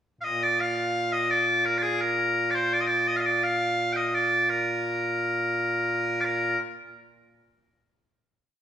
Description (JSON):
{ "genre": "scottish traditional, Scottish pipe music", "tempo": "85 BPM", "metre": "2/4", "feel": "straight", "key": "Bb major", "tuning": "A4 = 441 Hz", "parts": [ { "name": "loud bright bagpipes", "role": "solo", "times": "0.2-6.6 s", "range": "Bb2 to G5", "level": "-23 LUFS", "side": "equal", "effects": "none" } ], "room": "wet recital hall reverb, RT60 1.6 s", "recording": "recorded in a church or concert hall", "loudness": "-23 LUFS", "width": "side -9 dB against mid", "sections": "0.0-0.6 pickup bar; 0.6-6.2 A section; 6.2-7.7 final note", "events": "none", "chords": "none" }